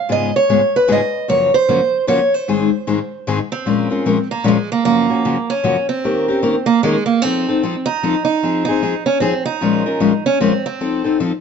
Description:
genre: jazz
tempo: 151 BPM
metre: 3/4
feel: swing 62% on 8ths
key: Bb minor from 3.7 s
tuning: A4 = 440 Hz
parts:
  - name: picked acoustic archtop guitar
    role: melody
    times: 0.0-11.2 s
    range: Ab3 to Eb5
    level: -17 LUFS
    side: right 3 dB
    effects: none
  - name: picked steel-string acoustic guitar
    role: accompaniment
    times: 0.1-11.3 s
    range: Gb2 to Bb4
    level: -17 LUFS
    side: left 5 dB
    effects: none
room: moderate studio reverb, RT60 0.8 s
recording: dark, warm production, nothing above 7.7 kHz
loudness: -14 LUFS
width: side -6 dB against mid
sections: 0.0-3.7 A section; 3.7-11.4 B section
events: none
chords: 0.1 Db7/Ab; 1.3 Gbmaj7; 2.5 Ab; 3.7 Bbm9; 4.9 Gbmaj7; 6.0 Eb7; 7.2 F7; 8.4 Fm7; 9.6 Bbm7; 10.8 F7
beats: | 0.09 0.49 0.88 | 1.28 1.68 2.08 | 2.47 2.87 3.27 | 3.66 4.06 4.46 | 4.85 5.25 5.65 | 6.04 6.44 6.84 | 7.23 7.63 8.03 | 8.42 8.82 9.22 | 9.61 10.01 10.40 | 10.80 11.20

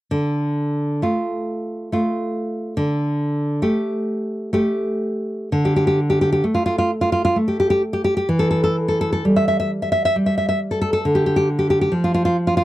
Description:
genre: romantic piece for solo classical guitar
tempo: 66 BPM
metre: 3/4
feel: uneven beats, rubato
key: D minor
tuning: A4 = 440 Hz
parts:
  - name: nylon-string guitar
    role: solo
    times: 0.1-12.6 s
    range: D3 to E5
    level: -18 LUFS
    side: equal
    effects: none
room: light reverb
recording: dry, close 1970s-style studio recording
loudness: -18 LUFS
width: side -15 dB against mid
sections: 0.1-5.5 A section; 5.5-12.6 B section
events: none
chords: 0.1 Dm; 2.8 Dsus4; 5.5 D5; 8.3 Emadd11; 11.0 Dm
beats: | 0.11 1.03 1.93 | 2.78 3.63 4.55 | 5.53 6.45 7.36 | 8.27 9.24 10.14 | 11.03 11.92

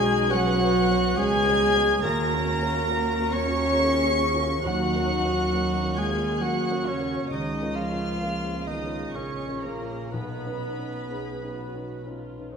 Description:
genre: cinematic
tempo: 60-70 BPM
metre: 3/4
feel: rubato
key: unclear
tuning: A4 = 435 Hz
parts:
  - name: rich studio violin section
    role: melody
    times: 0.0-12.0 s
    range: A#5 to C#7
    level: -32 LUFS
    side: left 4 dB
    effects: none
  - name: bright flute section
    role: second line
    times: 0.0-12.0 s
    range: A#4 to C#6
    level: -33 LUFS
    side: right 1 dB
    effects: none
  - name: mellow cor anglais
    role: second line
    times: 0.0-12.0 s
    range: A#3 to C#5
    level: -32 LUFS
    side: right 3 dB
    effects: none
  - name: warm studio violin section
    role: second line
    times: 0.0-12.0 s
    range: A#4 to C#6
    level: -35 LUFS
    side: left 1 dB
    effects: none
  - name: dark grand piano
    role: accompaniment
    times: 0.0-12.6 s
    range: B1 to C#5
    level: -33 LUFS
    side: left 2 dB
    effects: none
  - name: dark studio viola section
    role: accompaniment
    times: 0.0-12.6 s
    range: A#3 to B4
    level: -34 LUFS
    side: right 1 dB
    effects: none
  - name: mellow French horn section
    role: sustained chords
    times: 0.0-12.1 s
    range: A#3 to C#5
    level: -29 LUFS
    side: left 2 dB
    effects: none
  - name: dark studio double bass section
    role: bass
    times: 0.0-12.6 s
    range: A#1 to D#2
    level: -33 LUFS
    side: right 2 dB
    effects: none
  - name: warm studio cello section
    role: bass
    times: 0.0-12.1 s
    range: A#2 to C#4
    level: -30 LUFS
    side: right 2 dB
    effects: none
room: wet concert hall reverb, RT60 2.3 s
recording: minimal, uncompressed stereo recording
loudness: -22 LUFS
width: side -6 dB against mid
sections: 0.0-12.6 A section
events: none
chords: 0.0 Badd9; 2.0 D#m7; 7.3 A#m7/C#; 10.1 Badd9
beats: 0.30 1.17 | 2.03 2.89 3.76 | 4.64 5.52 6.41 | 7.30 8.20 9.14 | 10.12 11.10 12.05

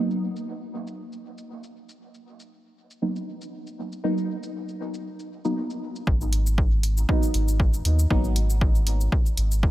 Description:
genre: dub techno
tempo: 118 BPM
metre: 4/4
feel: swing 55% on 16ths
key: G# minor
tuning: A4 = 440 Hz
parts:
  - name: deep mellow chord stab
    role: stabs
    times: 0.0-8.4 s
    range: F#3 to D#4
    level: -30 LUFS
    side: right 1 dB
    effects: chorus, phaser, sidechain pumping, dub echo
  - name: electronic cabasa and hi-hat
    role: drums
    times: 0.1-9.6 s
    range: none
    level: -34 LUFS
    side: equal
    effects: low-pass filter on perc, low-pass filter on hats
  - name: warm sub bass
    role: bass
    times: 6.1-9.7 s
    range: G#1 to D#2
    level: -22 LUFS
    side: equal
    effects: tube saturation, sidechain pumping
  - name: electronic kick drum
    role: drums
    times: 6.1-9.7 s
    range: none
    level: -22 LUFS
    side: equal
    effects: none
room: light reverb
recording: none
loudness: -22 LUFS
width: side -16 dB against mid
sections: 0.0-6.1 A section; 6.1-9.7 B section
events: filter sweep on synth stab 6.1-9.7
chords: 0.0 F#add11; 6.1 G#m9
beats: 0.48 0.99 1.50 | 2.00 2.51 3.02 3.53 | 4.04 4.55 5.05 5.56 | 6.07 6.58 7.09 7.60 | 8.11 8.61 9.12 9.63

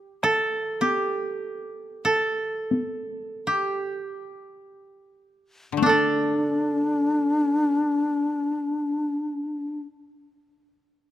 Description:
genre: japanese traditional, Japanese chamber music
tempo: 37-52 BPM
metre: 4/4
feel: rubato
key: unclear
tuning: A4 = 440 Hz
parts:
  - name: koto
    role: second line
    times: 0.0-9.9 s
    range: D4 to D5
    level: -24 LUFS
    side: right 2 dB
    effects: none
  - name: taiko ensemble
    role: percussion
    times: 0.2-6.6 s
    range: none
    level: -29 LUFS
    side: left 2 dB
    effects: none
  - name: koto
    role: accompaniment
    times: 5.7-9.8 s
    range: D3 to D4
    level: -29 LUFS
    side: left 7 dB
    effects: none
  - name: breathy mellow shakuhachi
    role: melody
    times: 5.8-9.8 s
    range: D4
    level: -23 LUFS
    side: left 1 dB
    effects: none
room: light reverb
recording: close, detailed microphones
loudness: -22 LUFS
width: side -12 dB against mid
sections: 0.0-5.8 A section; 5.8-11.1 B section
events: slowing down 0.0-5.8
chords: none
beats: | 0.22 1.41 2.71 4.20 | 5.82 7.45 9.02

